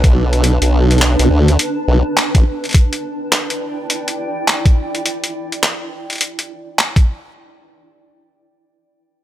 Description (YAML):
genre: glitch hop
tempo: 104 BPM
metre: 4/4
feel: swing 62% on 16ths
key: E minor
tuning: A4 = 440 Hz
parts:
  - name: formant-sweep wobble bass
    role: bass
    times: 0.0-2.4 s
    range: A1 to D2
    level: -12 LUFS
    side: equal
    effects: chorus
  - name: boom bap sampler-style drum kit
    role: drums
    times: 0.0-7.1 s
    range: handclaps, hi-hat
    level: -17 LUFS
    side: equal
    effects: small room ambience
  - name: electronic kick drum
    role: drums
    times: 0.0-7.0 s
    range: none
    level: -10 LUFS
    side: equal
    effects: small room ambience
  - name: granular cloud pad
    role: texture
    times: 0.0-5.1 s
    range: D4 to A5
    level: -22 LUFS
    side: right 1 dB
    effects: built-in reverb, sidechain pumping
room: light reverb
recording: none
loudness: -14 LUFS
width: side -13 dB against mid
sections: 0.0-7.4 A section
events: none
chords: 0.0 Bm7; 2.7 Em7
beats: | 0.44 1.01 1.59 2.17 | 2.74 3.32 3.90 4.47 | 5.05 5.63 6.21 6.78